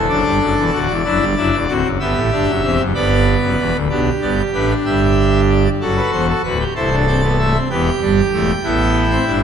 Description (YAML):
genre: classical, baroque-style 4-part fugue for pipe organ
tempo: 63 BPM (dotted quarters)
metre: 12/8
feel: straight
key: unclear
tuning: A4 = 441 Hz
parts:
  - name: pipe organ, full organ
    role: solo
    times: 0.0-9.4 s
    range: C1 to G5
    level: -14 LUFS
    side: equal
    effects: none
room: wet scoring stage reverb, RT60 1.9 s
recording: none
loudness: -14 LUFS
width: side -8 dB against mid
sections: 0.0-3.9 A section; 3.9-9.4 B section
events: none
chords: 0.1 D; 2.0 G; 5.8 F#dim; 7.7 Em